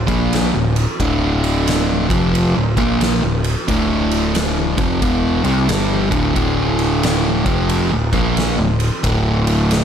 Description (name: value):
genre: stoner and doom metal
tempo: 90 BPM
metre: 4/4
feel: swing 64% on 8ths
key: D minor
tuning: A4 = 441 Hz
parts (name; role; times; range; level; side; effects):
- fuzz guitar; riff; 0.0-9.8 s; D2 to C4; -16 LUFS; equal; distortion
- growling picked electric bass; bass; 0.0-9.8 s; D1 to C2; -22 LUFS; equal; overdrive
- oversized low-tuned drum kit; drums; 0.1-9.8 s; kick drum, ride cymbal, snare drum; -21 LUFS; equal; none
room: little or no reverb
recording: none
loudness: -14 LUFS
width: side -8 dB against mid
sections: 0.0-9.8 A section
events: none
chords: 0.0 Dm